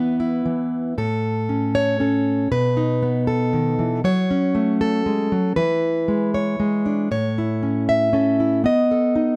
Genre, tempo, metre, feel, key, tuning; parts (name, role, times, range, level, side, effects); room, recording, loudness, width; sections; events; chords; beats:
folk, solo fingerstyle acoustic guitar; 117 BPM; 3/4; straight; A major; A4 = 440 Hz
fingerpicked plugged-in steel-string acoustic guitar; solo; 0.0-9.4 s; A2 to E5; -20 LUFS; equal
moderate small room reverb, RT60 0.6 s; -21 LUFS; mono
1.0-9.4 A section
0.0 E5; 1.0 A; 2.5 B7; 4.0 F#m; 5.6 E7; 7.1 A; 8.6 B7
0.46 | 0.97 1.49 2.00 | 2.51 3.02 3.53 | 4.04 4.55 5.06 | 5.57 6.08 6.59 | 7.11 7.62 8.13 | 8.64 9.15